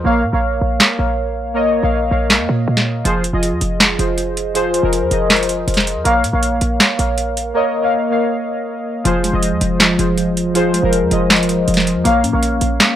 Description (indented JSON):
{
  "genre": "hip hop, trap",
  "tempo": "160 BPM",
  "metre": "4/4",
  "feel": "half-time",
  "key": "F minor",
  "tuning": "A4 = 441 Hz",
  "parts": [
    { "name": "warbly lo-fi synth keys", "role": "accompaniment", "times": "0.0-13.0 s", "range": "F3 to F5", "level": "-17 LUFS", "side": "left 1 dB", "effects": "chorus, phaser, low-pass filter" },
    { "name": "short 808-style bass", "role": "bass", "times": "0.0-12.8 s", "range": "F1 to Bb2", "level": "-20 LUFS", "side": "right 1 dB", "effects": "none" },
    { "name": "booming analog drum machine", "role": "drums", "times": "0.8-12.9 s", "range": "handclaps, hi-hat, snare drum", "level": "-15 LUFS", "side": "equal", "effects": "overdrive" },
    { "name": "mellow tine electric piano", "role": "arpeggios", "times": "9.1-13.0 s", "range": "F3 to Db4", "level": "-18 LUFS", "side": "equal", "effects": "medium stereo tremolo, low-pass filter, analog delay" }
  ],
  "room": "little or no reverb",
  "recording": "dry, gritty hardware recording",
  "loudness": "-14 LUFS",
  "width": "side -11 dB against mid",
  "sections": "0.0-13.0 A section",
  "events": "break 0.0-3.1, 7.6-9.1",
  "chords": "0.1 Bbm; 3.1 Fm; 6.1 Bbm; 9.1 Fm; 12.1 Bbm"
}